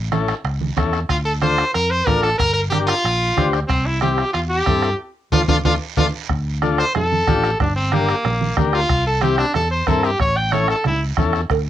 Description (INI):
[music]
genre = latin, cumbia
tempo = 184 BPM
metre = 4/4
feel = straight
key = D minor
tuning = A4 = 440 Hz
[part]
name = fingered electric bass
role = bass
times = 0.0-11.7 s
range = G1 to G2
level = -23 LUFS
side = equal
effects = none
[part]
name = combo organ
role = accompaniment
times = 0.1-11.4 s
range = C4 to C5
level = -22 LUFS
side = left 6 dB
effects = none
[part]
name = bombo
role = percussion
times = 0.1-11.7 s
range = none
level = -23 LUFS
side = right 1 dB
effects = none
[part]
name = congas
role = percussion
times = 0.1-11.3 s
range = none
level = -24 LUFS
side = right 7 dB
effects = none
[part]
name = guiro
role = percussion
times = 0.1-11.7 s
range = none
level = -38 LUFS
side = right 11 dB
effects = none
[part]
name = timbales and cowbell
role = percussion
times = 0.1-6.0, 11.5-11.7 s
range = none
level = -29 LUFS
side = right 12 dB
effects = none
[part]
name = brilliant trumpet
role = melody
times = 1.1-11.0 s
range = Bb3 to G5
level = -20 LUFS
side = equal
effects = cassette tape
[sound]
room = moderate small room reverb, RT60 0.5 s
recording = home recording on cassette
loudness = -16 LUFS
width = side -12 dB against mid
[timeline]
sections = 0.0-6.3 A section; 6.3-11.7 B section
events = band accent 5.0-6.3; drum fill 5.5-6.3; trumpet solo 6.3-11.7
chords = 0.0 A; 1.1 Dm; 2.4 Gm; 3.7 C; 5.0 Dm; 7.6 Gm; 8.9 C; 10.2 A